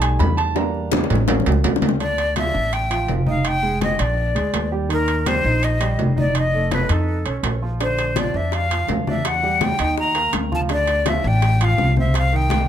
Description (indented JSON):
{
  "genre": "Afro-Cuban jazz",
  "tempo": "166 BPM",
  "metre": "4/4",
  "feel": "straight",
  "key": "D minor",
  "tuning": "A4 = 438 Hz",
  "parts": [
    { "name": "warm grand piano", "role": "accompaniment", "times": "0.0-12.6 s", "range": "D3 to B5", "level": "-26 LUFS", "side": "right 5 dB", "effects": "none" },
    { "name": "upright bass", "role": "bass", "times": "0.0-12.6 s", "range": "F1 to F2", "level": "-21 LUFS", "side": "equal", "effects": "none" },
    { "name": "bongos", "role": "percussion", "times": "0.0-2.0, 7.8-12.6 s", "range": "none", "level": "-27 LUFS", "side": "left 8 dB", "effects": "none" },
    { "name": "congas", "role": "percussion", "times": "0.0-12.7 s", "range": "none", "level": "-27 LUFS", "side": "left 2 dB", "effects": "none" },
    { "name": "timbales", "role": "percussion", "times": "0.0-12.7 s", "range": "none", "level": "-26 LUFS", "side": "right 6 dB", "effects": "none" },
    { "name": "breathy bright jazz flute", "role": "melody", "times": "2.0-12.7 s", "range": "A4 to Bb5", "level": "-22 LUFS", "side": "left 2 dB", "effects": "analog delay" }
  ],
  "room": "light reverb",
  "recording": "close, detailed microphones",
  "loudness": "-17 LUFS",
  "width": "side -10 dB against mid",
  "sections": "0.0-2.0 A section; 2.0-12.7 B section",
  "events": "grand piano solo 0.0-2.0; drum fill 0.6-2.0, 12.5",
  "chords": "0.0 B7b13; 0.6 Em7b5; 1.3 A7b13; 2.0 Dmadd9; 3.5 Fm11; 4.2 Bb7; 4.9 Eb6; 6.4 Faug7; 7.8 Bbadd9; 9.3 Ebmaj7; 10.0 Ebsus2; 10.7 Dm7; 12.1 Cm"
}